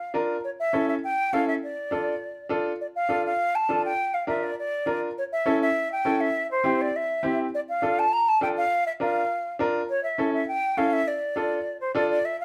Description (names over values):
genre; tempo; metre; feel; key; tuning
latin; 203 BPM; 4/4; straight; D minor; A4 = 440 Hz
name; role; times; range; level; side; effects
concert flute; melody; 0.0-12.4 s; C5 to Bb5; -27 LUFS; equal; none
clear upright piano; accompaniment; 0.1-12.2 s; C4 to Bb4; -29 LUFS; equal; none
room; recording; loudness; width
moderate studio reverb, RT60 0.7 s; none; -26 LUFS; mono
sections
0.0-2.8 A section; 2.8-12.3 B section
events
none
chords
0.4 A7; 1.6 Dm; 4.0 Bb; 5.2 A7; 6.3 C; 7.5 Dm; 8.7 Bb; 9.9 A7; 11.1 Dm